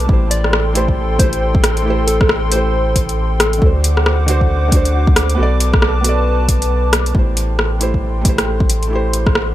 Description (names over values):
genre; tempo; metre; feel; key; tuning
future garage; 136 BPM; 4/4; swing 60% on 16ths; A dorian; A4 = 440 Hz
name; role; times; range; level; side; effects
felt-muted upright piano; accompaniment; 0.0-9.5 s; D3 to D5; -22 LUFS; right 2 dB; sidechain pumping, dub echo
dark analog pad; sustained chords; 0.0-9.5 s; A4 to D6; -23 LUFS; left 1 dB; chorus, vintage 12-bit sampler grit, sidechain pumping
soft dub sub bass; bass; 0.0-9.5 s; A1 to D2; -17 LUFS; equal; sidechain pumping
deep house drum kit; drums; 0.0-9.5 s; hi-hat, rim click; -17 LUFS; equal; overdrive
electronic kick drum; drums; 0.1-9.3 s; none; -15 LUFS; equal; overdrive
soft struck synth lead; melody; 0.3-3.7 s; A4 to D5; -24 LUFS; left 2 dB; chorus, tremolo, dub echo
room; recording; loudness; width
little or no reverb; none; -12 LUFS; side -14 dB against mid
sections
0.0-7.2 A section; 7.2-9.5 B section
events
kick drops out 6.7-7.2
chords
0.1 Am7; 3.6 D7; 5.4 Bm7; 7.2 Am7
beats
| 0.09 0.53 0.97 1.42 | 1.86 2.30 2.74 3.18 | 3.62 4.06 4.50 4.94 | 5.38 5.83 6.27 6.71 | 7.15 7.59 8.03 8.47 | 8.91 9.36